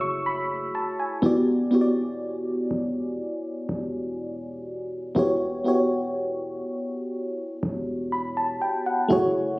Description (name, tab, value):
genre	R&B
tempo	61 BPM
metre	4/4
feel	straight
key	unclear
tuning	A4 = 440 Hz
part	mellow FM electric piano	accompaniment	0.0-9.6 s	A3 to E6	-24 LUFS	equal	chorus, phaser
part	warm 808-style bass	bass	0.0-9.6 s	E1 to F#1	-34 LUFS	equal	none
room	moderate lush hall reverb, RT60 2.5 s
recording	recorded on a phone in the room, studio reverb, compression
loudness	-23 LUFS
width	side -22 dB against mid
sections	0.0-9.1 A section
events	none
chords	0.0 F#m9; 1.2 Em9